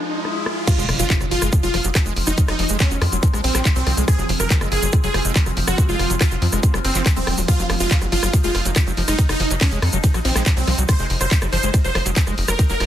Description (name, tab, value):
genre	psychedelic trance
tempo	141 BPM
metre	4/4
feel	straight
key	F phrygian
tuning	A4 = 440 Hz
part	overtone-sweeping drone	sustained chords	0.0-12.9 s	F3 to Eb4	-29 LUFS	equal	chorus, built-in reverb, phaser, sidechain pumping
part	riser and impact	sound effects	0.0-2.4 s	none	-27 LUFS	equal	none
part	garage drum kit	drums	0.2-12.9 s	crash cymbal, handclaps, hi-hat, ride cymbal, rim click	-25 LUFS	equal	soft clipping on snare, low-pass filter on snare, low-pass filter on hats, low-pass filter on cymbals, low-pass filter on room
part	supersaw stab	melody	0.7-12.9 s	C4 to C5	-24 LUFS	right 1 dB	phaser, sidechain pumping, dub echo
part	liquid acid bass	riff	0.7-12.9 s	F3 to Ab3	-28 LUFS	moving between left 5 dB and right 4 dB	chorus, auto-pan, sidechain pumping, ping-pong delay
part	electronic kick drum	drums	0.7-12.7 s	none	-16 LUFS	equal	none
part	egg shaker	percussion	0.7-12.8 s	none	-29 LUFS	right 2 dB	none
part	tight sequencer bass	bass	0.8-12.9 s	Eb1 to F2	-22 LUFS	equal	none
room	little or no reverb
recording	dense, heavily limited modern master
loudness	-16 LUFS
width	side -11 dB against mid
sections	0.7-12.9 A section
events	riser 0.0-0.7; drop 0.7-12.9; impact 0.7-2.4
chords	0.0 F5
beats	0.25 | 0.68 1.10 1.53 1.95 | 2.38 2.80 3.23 3.65 | 4.08 4.50 4.93 5.36 | 5.78 6.21 6.63 7.06 | 7.48 7.91 8.33 8.76 | 9.19 9.61 10.04 10.46 | 10.89 11.31 11.74 12.16 | 12.59